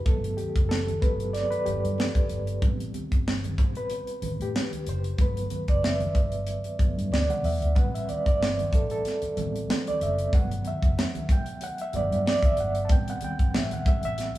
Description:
lush 1970s-style soul; 93 BPM; 4/4; swing 54% on 16ths; A dorian; A4 = 440 Hz
overdriven reed electric piano; accompaniment; 0.0-14.4 s; F#3 to A5; -29 LUFS; right 1 dB; fast tremolo
vintage muted fingered electric bass; bass; 0.1-14.3 s; F#1 to A2; -29 LUFS; equal
tight funk drum kit; drums; 0.1-14.4 s; hi-hat, kick drum, snare drum; -25 LUFS; equal
congas; percussion; 0.1-14.4 s; -39 LUFS; right 2 dB
moderate stone room reverb, RT60 1.4 s; band playing live in one room, small room ambience; -24 LUFS; side -15 dB against mid
0.0-14.4 A section
reed electric piano solo 0.0-14.4
0.1 Gmaj7; 2.6 Am7; 5.2 Gmaj7; 7.8 Am7; 10.3 Gmaj7; 12.9 Am7
| 0.05 0.70 1.34 1.98 | 2.62 3.27 3.91 4.55 | 5.19 5.83 6.47 7.12 | 7.76 8.40 9.04 9.69 | 10.33 10.97 11.61 12.26 | 12.90 13.54 14.18

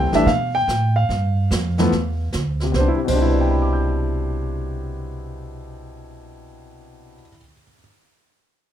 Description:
jazz piano trio; 146 BPM; 4/4; swing 66% on 8ths; C major; A4 = 440 Hz
clear grand piano; melody; 0.0-7.8 s; B2 to G6; -21 LUFS; left 1 dB
upright bass; bass; 0.0-7.2 s; A1 to B2; -22 LUFS; right 1 dB
jazz brush drum kit; drums; 0.1-3.2 s; brushed snare drum, crash cymbal, hi-hat, kick drum, snare drum; -28 LUFS; right 3 dB
moderate club reverb, RT60 0.6 s; minimal, uncompressed stereo recording; -18 LUFS; side -10 dB against mid
0.0-2.7 A section; 2.7-6.0 B section
0.0 Fmaj7; 1.1 G7(no3); 2.7 Cmaj9
0.27 0.68 | 1.10 1.51 1.92 2.33 | 2.75 3.16 3.57 3.98 | 4.39 4.81 5.22 5.63

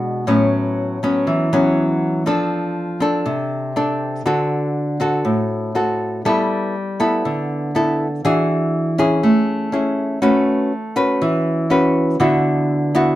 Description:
bossa nova; 121 BPM; 4/4; straight; A4 = 440 Hz
nylon-string guitar; solo; 0.0-13.2 s; A2 to B4; -16 LUFS; equal
light reverb; -16 LUFS; side -14 dB against mid
0.0-10.2 A section; 10.2-13.2 B section
0.3 A69; 2.3 F6; 4.3 D7; 6.2 G69; 8.2 E9; 9.2 Amaj7; 10.2 A69; 12.2 D69
| 0.27 0.77 1.27 1.77 | 2.26 2.76 3.26 3.76 | 4.25 4.75 5.25 5.75 | 6.25 6.74 7.24 7.74 | 8.23 8.73 9.23 9.73 | 10.22 10.72 11.21 11.71 | 12.21 12.70

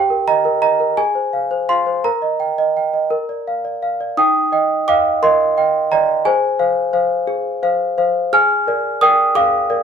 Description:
classical, lullaby for celesta; 57 BPM (dotted quarters); 6/8; straight; Eb major; A4 = 440 Hz
celesta; solo; 0.0-9.8 s; Eb4 to F6; -14 LUFS; right 1 dB
moderate studio reverb, RT60 0.7 s; band playing live in one room; -14 LUFS; side -7 dB against mid
0.0-4.2 A section; 4.2-9.8 B section
0.0 Eb/G; 1.0 Fm/Ab; 2.0 Eb/Bb; 3.1 Bb; 4.2 Eb; 6.3 Fm/Ab; 8.3 Bb7/Ab
0.98 | 2.05 3.12 | 4.18 5.23 | 6.26 7.29 | 8.33 9.36

